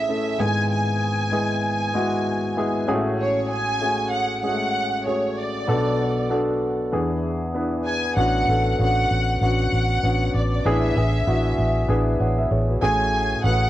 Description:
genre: piano-driven pop.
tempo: 96 BPM.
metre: 4/4.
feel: swing 56% on 16ths.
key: unclear.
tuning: A4 = 439 Hz.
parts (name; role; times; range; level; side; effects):
warm studio violin section; melody; 0.0-13.7 s; C#5 to G#5; -24 LUFS; right 1 dB; cassette tape.
warm concert grand piano; accompaniment; 0.0-13.7 s; G#1 to F#5; -23 LUFS; left 1 dB; cassette tape.
vintage muted fingered electric bass; bass; 8.2-13.7 s; A1; -22 LUFS; equal; none.
room: light reverb, small room ambience.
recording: home recording on cassette.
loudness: -20 LUFS.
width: side -14 dB against mid.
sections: 0.0-8.2 A section; 8.2-13.7 B section.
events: none.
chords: 0.4 E/G#; 2.9 F#madd9/A; 5.7 Bm7; 6.9 E7; 8.2 Bmadd9/A; 10.7 E7/A; 12.8 F#madd9/A.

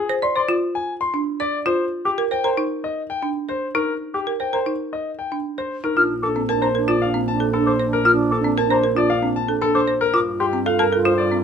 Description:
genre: classical, minimalist pattern music.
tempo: 115 BPM.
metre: 4/4.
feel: straight.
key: unclear.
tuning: A4 = 440 Hz.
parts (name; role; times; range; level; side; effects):
bright grand piano; melody; 0.0-11.4 s; G4 to C6; -23 LUFS; left 5 dB; none.
folk marimba with hard mallets; arpeggios; 0.1-11.4 s; C4 to D5; -22 LUFS; right 2 dB; none.
mellow hollow silver concert flute; arpeggios; 0.4-10.9 s; A5 to F6; -20 LUFS; left 1 dB; none.
mellow alto flute; second line; 6.0-11.4 s; D4 to F4; -26 LUFS; right 4 dB; none.
rich double bass; bass; 6.0-11.4 s; Bb1 to G2; -26 LUFS; right 4 dB; none.
room: light reverb.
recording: none.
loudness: -18 LUFS.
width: side -7 dB against mid.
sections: 0.0-6.0 A section; 6.0-11.4 B section.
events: none.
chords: 0.0 F5; 1.8 Ebmaj7; 6.0 Bbmaj7; 10.1 Gm9.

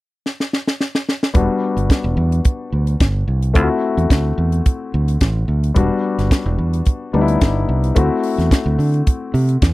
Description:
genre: disco.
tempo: 109 BPM.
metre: 4/4.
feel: straight.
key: E minor.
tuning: A4 = 440 Hz.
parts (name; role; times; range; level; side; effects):
tight funk drum kit; drums; 0.3-9.7 s; hi-hat, kick drum, snare drum; -15 LUFS; equal; none.
warm grand piano; accompaniment; 1.3-9.7 s; G3 to F#4; -21 LUFS; left 4 dB; none.
fingered electric bass; bass; 1.4-9.7 s; E1 to D3; -17 LUFS; right 1 dB; none.
room: little or no reverb.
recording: dry, close 1970s-style studio recording.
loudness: -15 LUFS.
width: side -18 dB against mid.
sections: 0.0-1.3 A section; 1.3-9.7 B section.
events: drum fill 0.2-1.3.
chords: 0.0 N.C.; 1.3 Em9; 3.6 D7; 5.8 Em9; 8.0 D7.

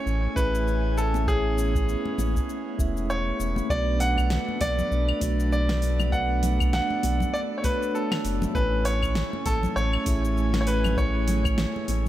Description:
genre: sunset chillout.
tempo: 99 BPM.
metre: 4/4.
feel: swing 58% on 16ths.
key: unclear.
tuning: A4 = 440 Hz.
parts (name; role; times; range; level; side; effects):
bright baby grand piano; melody; 0.0-12.1 s; G#4 to F#5; -28 LUFS; equal; digital delay.
mellow tine electric piano; accompaniment; 0.0-12.1 s; A3 to G#5; -32 LUFS; equal; medium stereo tremolo, auto-pan, digital delay.
airy breathy pad; sustained chords; 0.0-12.1 s; A3 to G#5; -33 LUFS; right 3 dB; chorus, vintage 12-bit sampler grit.
warm sub bass; bass; 0.1-12.1 s; E1 to B1; -26 LUFS; equal; none.
smooth R&B drum kit; drums; 0.1-12.0 s; claves, hi-hat, shaker, snare drum; -32 LUFS; left 1 dB; none.
electronic kick drum; drums; 0.4-12.1 s; none; -28 LUFS; equal; none.
congas; percussion; 1.1-12.1 s; none; -34 LUFS; left 3 dB; none.
room: light reverb, digital ambience.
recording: none.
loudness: -22 LUFS.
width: side -13 dB against mid.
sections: 0.0-12.1 A section.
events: none.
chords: 0.0 Amaj7; 3.7 Bm7; 8.5 Amaj7.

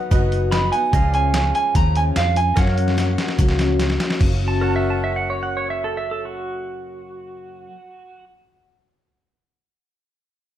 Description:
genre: honky-tonk and classic country.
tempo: 147 BPM.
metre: 4/4.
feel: straight.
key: F# major.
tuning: A4 = 438 Hz.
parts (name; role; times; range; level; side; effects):
electric guitar through a small old amp; melody; 0.0-3.8 s; E#5 to B5; -22 LUFS; right 3 dB; none.
picked steel-string acoustic guitar; accompaniment; 0.0-7.8 s; F#2 to F#4; -26 LUFS; left 4 dB; none.
pedal steel guitar; sustained chords; 0.0-7.8 s; G#4 to F#5; -33 LUFS; right 1 dB; none.
bright upright piano; accompaniment; 0.1-0.8 s; F#4 to D#5; -30 LUFS; right 7 dB; none.
vintage muted fingered electric bass; bass; 0.1-7.3 s; F#1 to F#2; -21 LUFS; equal; none.
trip hop sampler-style drum kit; drums; 0.1-4.3 s; crash cymbal, hi-hat, kick drum, snare drum; -21 LUFS; equal; none.
pedal steel guitar; second line; 4.5-8.2 s; F#4 to A5; -26 LUFS; right 3 dB; tape echo.
room: light reverb.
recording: close, detailed microphones.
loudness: -17 LUFS.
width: side -11 dB against mid.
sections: 0.0-4.2 A section; 4.2-7.5 B section.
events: drum fill 2.6-4.2.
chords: 0.0 B; 0.9 C#; 2.6 F#.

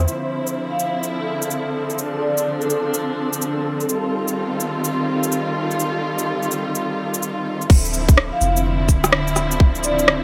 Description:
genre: future garage.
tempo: 126 BPM.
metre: 4/4.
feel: swing 63% on 16ths.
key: D minor.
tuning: A4 = 440 Hz.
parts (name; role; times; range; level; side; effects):
dark studio string section; sustained chords; 0.0-10.2 s; D3 to F4; -25 LUFS; equal; sidechain pumping.
soft 808-style bass; bass; 0.0-0.1, 7.7-10.2 s; D1 to F1; -25 LUFS; equal; sidechain pumping.
flickering grainy texture; texture; 0.0-7.7 s; A4; -32 LUFS; equal; built-in reverb, lush chorus.
organic electronic drum kit; drums; 0.1-10.2 s; cabasa, crash cymbal, rim click, shaker; -23 LUFS; equal; overdrive.
vibraphone with soft mallets; melody; 0.7-2.9, 8.3-10.1 s; A4 to F5; -27 LUFS; equal; delay.
electronic kick drum; drums; 7.7-9.7 s; none; -14 LUFS; equal; overdrive.
room: moderate plate reverb, RT60 1.3 s, digital ambience.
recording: bright 1980s-style digital production.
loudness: -20 LUFS.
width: mono.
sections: 0.1-7.7 A section; 7.7-10.2 B section.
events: none.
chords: 0.1 Dm9; 3.9 Eb69; 7.7 Dm9.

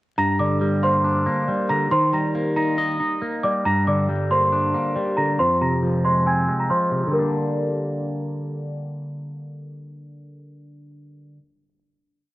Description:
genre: hip hop, drill.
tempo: 138 BPM.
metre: 4/4.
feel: half-time.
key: G phrygian.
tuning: A4 = 440 Hz.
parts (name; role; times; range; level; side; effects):
celesta; melody; 0.2-8.4 s; Bb4 to Bb6; -22 LUFS; right 1 dB; low-pass filter.
clean electric guitar; accompaniment; 0.2-11.5 s; F2 to Eb5; -23 LUFS; equal; phaser, low-pass filter.
room: moderate lush hall reverb, RT60 3.2 s.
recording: worn, warbling old tape, cassette tape, vinyl crackle, warbly pitch drift, low-pass filter.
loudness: -19 LUFS.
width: side -17 dB against mid.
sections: 0.2-7.1 breakdown; 7.1-10.6 final chord.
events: filter sweep 0.2-7.1.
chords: 0.2 Gm; 1.9 Eb; 3.7 Gm; 5.4 Fm; 7.1 Gm.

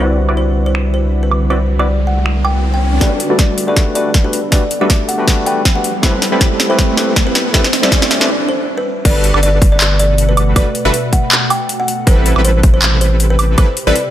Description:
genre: future bass.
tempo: 159 BPM.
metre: 4/4.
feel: swing 55% on 16ths, half-time.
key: G major.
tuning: A4 = 440 Hz.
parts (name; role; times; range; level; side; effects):
buzzing kalimba; melody; 0.0-14.1 s; B4 to G5; -20 LUFS; left 1 dB; sidechain pumping, dub echo.
barky tine electric piano; accompaniment; 0.0-8.3 s; G3 to D5; -20 LUFS; left 2 dB; sidechain pumping, dub echo.
ethereal airy pad; sustained chords; 0.0-14.1 s; B2 to B5; -25 LUFS; right 1 dB; ensemble chorus, built-in reverb, sidechain pumping.
supersaw stab; riff; 0.0-13.9 s; G3 to D5; -20 LUFS; equal; sidechain pumping, low-pass filter.
saturated sub bass; bass; 0.0-3.0, 9.1-13.9 s; G1 to C2; -14 LUFS; equal; sidechain pumping.
riser; sound effects; 1.4-8.3 s; none; -23 LUFS; right 2 dB; none.
trap drum kit; drums; 0.3-14.0 s; crash cymbal, finger snaps, handclaps, hi-hat, snare drum, woodblock; -16 LUFS; equal; overdrive, high-pass filter on snare, low-pass filter on snare, studio reverb, high-pass filter on perc, low-pass filter on perc, high-pass filter on hats, low-pass filter on hats, high-pass filter on cymbals, low-pass filter on cymbals.
electronic kick drum; drums; 3.0-13.7 s; none; -12 LUFS; equal; overdrive, studio reverb.
wide unison pluck; arpeggios; 9.1-13.9 s; B4; -23 LUFS; right 1 dB; sidechain pumping, dub echo.
room: light reverb, digital ambience.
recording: none.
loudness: -11 LUFS.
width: side -12 dB against mid.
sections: 0.0-3.0 A section; 3.0-9.1 B section; 9.1-14.1 C section.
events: riser 1.4-3.0, 3.0-8.3; build-up 3.0-9.1; drum fill 3.0-8.3; filter sweep on supersaw synth 3.0-9.1; break 8.3-9.1; drop 9.1-14.1.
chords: 0.0 Cmaj9#11; 3.0 Gmaj9; 6.0 Am9; 9.1 Gmaj9; 12.1 Am9.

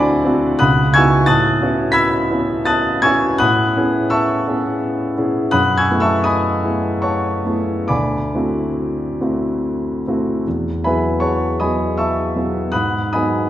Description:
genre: classical, impressionist solo piano.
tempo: 67-92 BPM.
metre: 3/4.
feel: rubato.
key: E major.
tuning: A4 = 441 Hz.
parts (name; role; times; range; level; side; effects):
warm grand piano; solo; 0.0-13.5 s; C#2 to B6; -15 LUFS; equal; none.
room: wet recital hall reverb, RT60 1.6 s.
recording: heard from further back in the room.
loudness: -15 LUFS.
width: side -12 dB against mid.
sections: 0.0-10.5 A section; 10.5-13.5 B section.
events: none.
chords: 0.0 D9; 0.6 C#m11; 1.3 A69; 5.5 F#m11; 7.9 D9; 10.5 Eadd9; 12.7 G#m7.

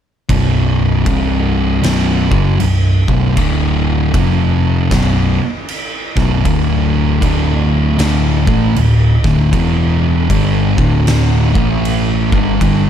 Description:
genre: stoner and doom metal.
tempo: 78 BPM.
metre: 4/4.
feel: swing 63% on 8ths.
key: B minor.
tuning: A4 = 445 Hz.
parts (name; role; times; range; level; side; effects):
fuzz guitar; riff; 0.3-12.9 s; B1 to A3; -16 LUFS; left 8 dB; distortion.
thick fuzz guitar; riff; 0.3-12.9 s; B1 to A3; -16 LUFS; right 8 dB; distortion.
overdriven picked electric bass; bass; 0.3-12.9 s; B0 to A1; -17 LUFS; equal; none.
oversized low-tuned drum kit; drums; 0.3-12.8 s; crash cymbal, kick drum, snare drum; -19 LUFS; equal; none.
room: light reverb.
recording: dark, warm production.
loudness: -11 LUFS.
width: side -9 dB against mid.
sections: 0.3-12.9 A section.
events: none.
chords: 0.3 B5; 1.1 C5; 1.8 B5; 3.4 D5; 4.1 F5; 4.9 B5; 6.5 D5; 9.5 E5; 10.3 D5; 11.5 A5; 12.2 G5.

